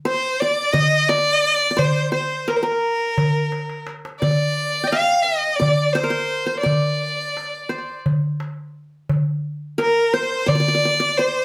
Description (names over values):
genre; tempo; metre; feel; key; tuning
Turkish makam ensemble; 173 BPM (eighths); 7/8; straight; D makam kurdi; A4 = 440 Hz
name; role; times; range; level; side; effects
clear violin; melody; 0.1-11.4 s; Bb4 to F5; -22 LUFS; equal; none
qanun; second line; 0.1-11.4 s; Bb4 to G5; -26 LUFS; equal; slapback echo
darbuka; percussion; 0.1-10.6 s; none; -25 LUFS; equal; none
room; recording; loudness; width
moderate studio reverb, RT60 0.5 s; none; -20 LUFS; mono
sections
0.0-11.4 A section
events
drum fill 3.5-4.2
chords
none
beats
0.05 0.40 0.74 1.09 1.44 | 1.78 2.13 2.48 2.83 3.17 3.52 3.87 | 4.21 4.56 4.91 5.26 5.60 5.95 6.30 | 6.65 6.99 7.34 7.69 8.04 8.38 8.73 | 9.08 9.43 9.78 10.12 10.47 10.82 11.17